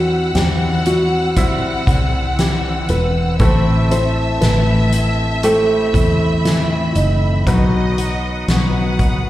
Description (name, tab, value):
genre	pop ballad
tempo	59 BPM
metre	4/4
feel	straight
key	unclear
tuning	A4 = 440 Hz
part	nylon-string guitar	melody	0.0-9.0 s	D#4 to C5	-21 LUFS	right 1 dB	slapback echo, digital delay
part	warm symphonic violin section	second line	0.0-9.3 s	D#5 to F#5	-25 LUFS	left 1 dB	slapback echo
part	clear baby grand piano	accompaniment	0.0-9.3 s	A2 to E5	-26 LUFS	equal	slapback echo
part	warm studio string section	sustained chords	0.0-9.3 s	C4 to E6	-28 LUFS	equal	none
part	fingerpicked steel-string acoustic guitar	arpeggios	0.0-9.3 s	A2 to F#4	-23 LUFS	left 3 dB	none
part	vintage muted fingered electric bass	bass	0.0-9.3 s	E1 to E2	-18 LUFS	equal	none
part	soft-mallet drum kit	drums	0.3-9.2 s	hi-hat, kick drum, snare drum	-20 LUFS	equal	none
room	light reverb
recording	live gig heard through the venue's PA, recital hall reverb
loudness	-14 LUFS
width	side -14 dB against mid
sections	0.0-9.3 A section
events	none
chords	0.0 C/E; 3.4 Am; 7.5 B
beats	0.35 1.37 2.39 | 3.40 4.42 5.44 6.45 | 7.47 8.49